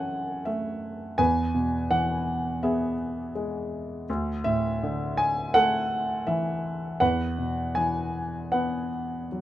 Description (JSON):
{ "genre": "classical, lyrical solo piano", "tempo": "82 BPM", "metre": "4/4", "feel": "rubato", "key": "unclear", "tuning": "A4 = 442 Hz", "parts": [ { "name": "dark grand piano", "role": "solo", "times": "0.0-9.4 s", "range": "D2 to G#5", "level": "-25 LUFS", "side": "equal", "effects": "none" } ], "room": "light reverb", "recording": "minimal, uncompressed stereo recording", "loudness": "-25 LUFS", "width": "side -13 dB against mid", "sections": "0.0-9.4 A section", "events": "none", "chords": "0.0 F#m7; 1.2 Eadd9; 4.1 Dsus2; 7.0 Esus2" }